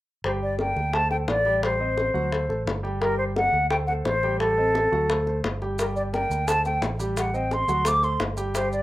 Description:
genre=latin, salsa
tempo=173 BPM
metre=4/4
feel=straight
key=unclear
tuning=A4 = 439 Hz
part: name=concert flute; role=melody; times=0.2-8.8 s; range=A4 to D6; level=-24 LUFS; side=equal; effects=none
part: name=warm grand piano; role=accompaniment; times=0.2-8.8 s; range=F#3 to G5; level=-30 LUFS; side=equal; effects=none
part: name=fingered electric bass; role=bass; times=0.2-8.8 s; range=G1 to D2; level=-29 LUFS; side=right 1 dB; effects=none
part: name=bongos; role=percussion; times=0.2-8.7 s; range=none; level=-30 LUFS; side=left 3 dB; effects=none
part: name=maracas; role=percussion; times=5.8-8.8 s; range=none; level=-39 LUFS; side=right 4 dB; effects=none
room=wet small room reverb, RT60 0.6 s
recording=rough home demo mix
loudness=-22 LUFS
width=side -16 dB against mid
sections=0.2-8.8 A section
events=none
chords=0.2 Gm; 0.9 D5; 1.6 Am7b5; 2.3 D5; 3.0 Gm; 3.7 D5; 4.4 Am7b5; 5.1 D5; 5.8 Gm; 6.5 D5; 7.2 Am7b5; 7.9 D5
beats=| 0.24 0.59 0.94 1.28 | 1.63 1.98 2.32 2.67 | 3.02 3.36 3.71 4.05 | 4.40 4.75 5.09 5.44 | 5.78 6.13 6.47 6.82 | 7.17 7.51 7.86 8.20 | 8.55

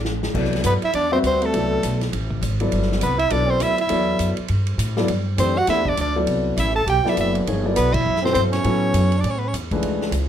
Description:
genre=modal jazz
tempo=202 BPM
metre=4/4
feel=swing 60% on 8ths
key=C lydian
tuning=A4 = 438 Hz
part: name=edgy soprano saxophone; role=melody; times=0.0-9.5 s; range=A4 to A5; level=-22 LUFS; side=equal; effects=none
part: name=upright bass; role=bass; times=0.0-10.3 s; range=F#1 to A2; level=-23 LUFS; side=equal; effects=none
part: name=swinging big-band drum kit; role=drums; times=0.0-10.2 s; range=crash cymbal, hi-hat, kick drum, ride cymbal, snare drum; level=-29 LUFS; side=equal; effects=none
part: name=warm grand piano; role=accompaniment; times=0.3-10.1 s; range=C#2 to F#5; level=-23 LUFS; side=left 2 dB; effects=none
part: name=brilliant trombone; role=second line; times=0.7-9.5 s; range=A3 to A4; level=-25 LUFS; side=right 4 dB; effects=none
room=moderate club reverb, RT60 0.6 s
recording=none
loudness=-18 LUFS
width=side -9 dB against mid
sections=0.3-9.8 A section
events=drum fill 0.0-0.3; band accent 7.9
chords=0.3 Cmaj7; 8.6 A69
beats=0.05 | 0.35 0.65 0.94 1.24 | 1.53 1.83 2.13 2.42 | 2.72 3.02 3.31 3.61 | 3.90 4.20 4.50 4.79 | 5.09 5.39 5.68 5.98 | 6.28 6.57 6.87 7.17 | 7.46 7.76 8.05 8.35 | 8.65 8.94 9.24 9.54 | 9.83 10.13

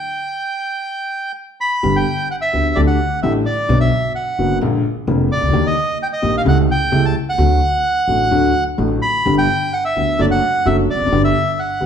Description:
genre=tango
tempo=129 BPM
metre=4/4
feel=rubato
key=G major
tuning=A4 = 439 Hz
part: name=bandoneon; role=melody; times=0.0-11.9 s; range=D5 to B5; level=-18 LUFS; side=right 2 dB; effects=none
part: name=dark upright piano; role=accompaniment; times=1.8-11.9 s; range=F1 to G4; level=-18 LUFS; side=left 3 dB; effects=none
part: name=upright bass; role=bass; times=1.8-11.9 s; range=E1 to Eb2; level=-20 LUFS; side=right 2 dB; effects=none
room=wet large studio reverb, RT60 1.2 s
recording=heard from further back in the room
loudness=-14 LUFS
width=side -8 dB against mid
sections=0.0-1.8 A section; 1.8-11.9 A section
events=stop 0.0-1.8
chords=0.0 N.C.; 1.8 G; 2.8 Dsus4; 3.7 Bm; 4.6 Bb7; 5.5 Eb; 6.5 A7/C#; 7.4 D; 9.3 G; 10.2 D/F#; 11.1 G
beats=0.41 0.88 1.35 | 1.83 2.30 2.77 3.23 | 3.69 4.16 4.62 5.08 | 5.54 6.00 6.46 6.92 | 7.38 7.84 8.31 8.78 | 9.26 9.73 10.20 10.66 | 11.13 11.59

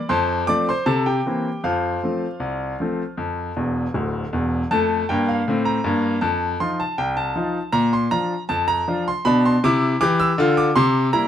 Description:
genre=ragtime piano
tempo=79 BPM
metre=2/4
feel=straight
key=F major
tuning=A4 = 442 Hz
part: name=clear grand piano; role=solo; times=0.0-11.3 s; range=D1 to E6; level=-18 LUFS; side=left 1 dB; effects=none
room=moderate club reverb, RT60 0.6 s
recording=dark, warm production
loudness=-18 LUFS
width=side -10 dB against mid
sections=0.0-4.7 A section; 4.7-11.3 A section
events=grand piano fill 3.6-4.7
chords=0.1 F; 0.9 C7; 1.6 F; 6.2 F5; 7.7 Bb; 9.3 Bdim; 10.8 C7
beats=| 0.10 0.87 | 1.63 2.40 | 3.17 3.94 | 4.71 5.47 | 6.23 6.99 | 7.75 8.50 | 9.26 10.01 | 10.77

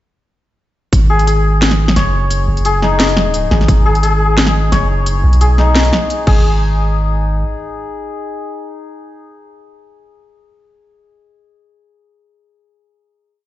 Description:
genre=half-time drum and bass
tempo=174 BPM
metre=4/4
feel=swing 53% on 16ths, half-time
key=G# minor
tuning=A4 = 439 Hz
part: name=long sustained 808-style bass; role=bass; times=0.9-7.4 s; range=F#1 to B1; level=-13 LUFS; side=equal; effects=none
part: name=drum and bass drum kit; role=drums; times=0.9-6.3 s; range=crash cymbal, hi-hat, snare drum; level=-17 LUFS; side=equal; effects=none
part: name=electronic kick drum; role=drums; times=0.9-1.0, 3.7-3.8, 6.3 s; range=none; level=-11 LUFS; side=equal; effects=overdrive
part: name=santur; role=arpeggios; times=1.1-9.3 s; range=D#4 to C#5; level=-18 LUFS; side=left 4 dB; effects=tape echo
room=light reverb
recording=played on a big sound system in a bare room, stone room reverb, nothing above 7.8 kHz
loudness=-11 LUFS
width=side -14 dB against mid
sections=0.9-6.4 drop; 6.4-9.2 final hit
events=drop 0.9-6.4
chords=0.9 G#5; 6.3 N.C.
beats=| 0.93 1.27 1.62 1.96 | 2.31 2.65 3.00 3.34 | 3.69 4.03 4.38 4.72 | 5.07 5.41 5.75 6.10 | 6.44 6.79 7.13 7.48 | 7.82 8.17 8.51 8.86

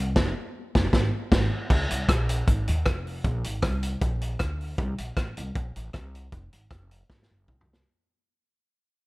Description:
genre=ska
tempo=156 BPM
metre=4/4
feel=swing 54% on 8ths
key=Db major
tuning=A4 = 443 Hz
part: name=upright bass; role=bass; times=0.0-7.8 s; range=F1 to Eb2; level=-28 LUFS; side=equal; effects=none
part: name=vintage drum kit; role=drums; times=0.2-7.8 s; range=crash cymbal, hi-hat, kick drum, rim click, snare drum, toms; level=-25 LUFS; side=equal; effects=none
room=little or no reverb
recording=none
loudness=-24 LUFS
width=side -22 dB against mid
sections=0.0-1.7 A section; 1.7-7.9 B section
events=band accent 0.2-1.7; fade-out 1.7-7.9; drum fill 7.1-7.9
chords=none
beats=| 0.16 0.55 0.93 1.32 | 1.70 2.09 2.48 2.86 | 3.25 3.63 4.02 4.40 | 4.79 5.17 5.56 5.94 | 6.33 6.71 7.10 7.48

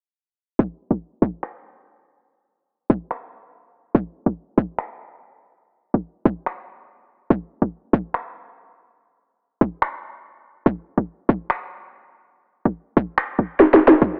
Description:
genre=future bass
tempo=143 BPM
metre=4/4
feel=half-time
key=none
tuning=none
part: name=electronic kick drum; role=drums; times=0.6-14.1 s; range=none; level=-19 LUFS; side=equal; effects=overdrive
part: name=electronic finger snaps and snare drum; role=drums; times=1.4-14.0 s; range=none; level=-17 LUFS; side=equal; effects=overdrive
room=light reverb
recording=low-pass filter, AM radio sound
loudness=-22 LUFS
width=mono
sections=0.6-14.2 A section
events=filter sweep 0.6-14.2; drum fill 13.6-14.0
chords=none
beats=| 0.59 1.01 1.43 1.85 | 2.27 2.69 3.11 3.53 | 3.95 4.37 4.79 5.21 | 5.62 6.04 6.46 6.88 | 7.30 7.72 8.14 8.56 | 8.98 9.40 9.82 10.24 | 10.66 11.08 11.50 11.92 | 12.34 12.76 13.18 13.60 | 14.02

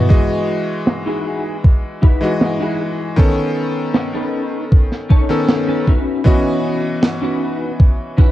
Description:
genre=vaporwave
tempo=78 BPM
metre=4/4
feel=straight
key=unclear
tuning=A4 = 439 Hz
part: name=bright electric grand piano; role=accompaniment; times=0.0-8.3 s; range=D#3 to D#5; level=-19 LUFS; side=left 1 dB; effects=lush chorus, tape echo
part: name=electronic kick drum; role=drums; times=0.1-8.3 s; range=none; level=-11 LUFS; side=equal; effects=overdrive, vintage 12-bit sampler grit
part: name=clean electric guitar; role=riff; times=0.9-8.3 s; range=C#4 to C#5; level=-23 LUFS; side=left 1 dB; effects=ensemble chorus, vintage 12-bit sampler grit, low-pass filter, tape echo
part: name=snare drum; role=drums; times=0.9-7.2 s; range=none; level=-19 LUFS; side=right 1 dB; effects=low-pass filter on hats, vintage 12-bit sampler grit, low-pass filter on toms, low-pass filter on snare, low-pass filter on room
room=light reverb, small room ambience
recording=dark, warm production, cassette tape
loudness=-14 LUFS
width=side -14 dB against mid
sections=0.1-8.3 A section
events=filter sweep on drum 0.1-8.3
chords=0.1 Emaj9; 3.2 B9; 5.9 C#m11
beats=| 0.10 0.87 1.64 2.41 | 3.18 3.95 4.72 5.49 | 6.26 7.03 7.80

